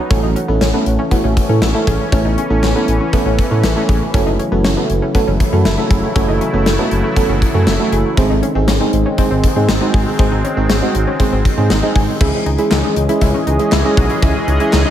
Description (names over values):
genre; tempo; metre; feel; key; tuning
synth-pop; 119 BPM; 4/4; straight; C# minor; A4 = 441 Hz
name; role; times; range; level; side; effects
mellow FM electric piano; accompaniment; 0.0-14.9 s; G#3 to A4; -18 LUFS; right 3 dB; chorus, dub echo
sweeping resonant pad; sustained chords; 0.0-14.9 s; C#3 to D#5; -21 LUFS; left 1 dB; chorus
analog pluck; arpeggios; 0.1-14.9 s; B3 to G#4; -23 LUFS; left 3 dB; chorus, dub echo
smooth synth bass; bass; 0.1-14.8 s; F#1 to A2; -17 LUFS; equal; none
gated 80s drum kit; drums; 0.1-14.8 s; crash cymbal, handclaps, hi-hat, kick drum, snare drum; -17 LUFS; equal; dub echo
room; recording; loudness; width
light reverb, studio reverb; echo-heavy mix; -12 LUFS; side -11 dB against mid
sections
0.0-12.2 A section; 12.2-14.9 B section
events
FM electric piano fill 14.7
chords
0.1 A; 4.1 F#m7; 8.2 G#; 12.2 C#madd9